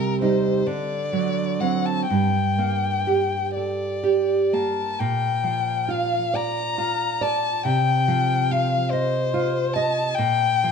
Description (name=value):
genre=romantic duo for violin and classical guitar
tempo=40-48 BPM (dotted quarters)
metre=6/8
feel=rubato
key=G minor, Bb major from 5.0 s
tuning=A4 = 440 Hz
part: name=rich violin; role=melody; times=0.0-10.7 s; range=Bb4 to Bb5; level=-24 LUFS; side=left 7 dB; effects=none
part: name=nylon-string guitar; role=accompaniment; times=0.0-10.7 s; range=G2 to Eb5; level=-22 LUFS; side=right 4 dB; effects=none
room=moderate recital hall reverb, RT60 1.5 s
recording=dark, warm production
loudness=-20 LUFS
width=side -6 dB against mid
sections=0.0-5.0 A section; 5.0-10.7 B section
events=none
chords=0.0 Cm7; 0.7 D7; 2.1 Gm; 5.0 Bb; 7.7 F5/C; 10.2 Bb5